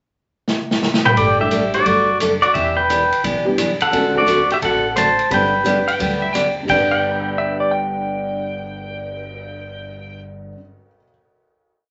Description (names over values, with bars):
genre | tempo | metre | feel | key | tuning
country, western swing | 174 BPM | 4/4 | swing 65% on 8ths | G major | A4 = 441 Hz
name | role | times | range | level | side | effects
swinging big-band drum kit | drums | 0.5-9.4 s | crash cymbal, cymbal swell, hi-hat, kick drum, ride cymbal, rim click, snare drum, toms | -26 LUFS | equal | none
pedal steel guitar | melody | 1.1-10.2 s | F#4 to A5 | -20 LUFS | equal | none
picked steel-string acoustic guitar | accompaniment | 1.2-10.6 s | G2 to A4 | -24 LUFS | equal | none
upright bass | bass | 1.2-10.5 s | E1 to D2 | -35 LUFS | equal | none
honky-tonk upright piano | accompaniment | 1.4-11.1 s | G2 to D7 | -27 LUFS | equal | none
clean lap steel guitar | second line | 5.9-10.2 s | D5 to G5 | -26 LUFS | equal | none
room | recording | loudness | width
wet club reverb, RT60 0.6 s | nothing above 7.9 kHz | -17 LUFS | mono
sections
0.0-1.2 pickup bar; 1.2-6.7 A section; 6.7-9.4 final chord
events
drum fill 0.5-1.2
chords
0.0 N.C.; 1.2 Gsus2; 2.5 Em7; 3.9 D7; 5.3 G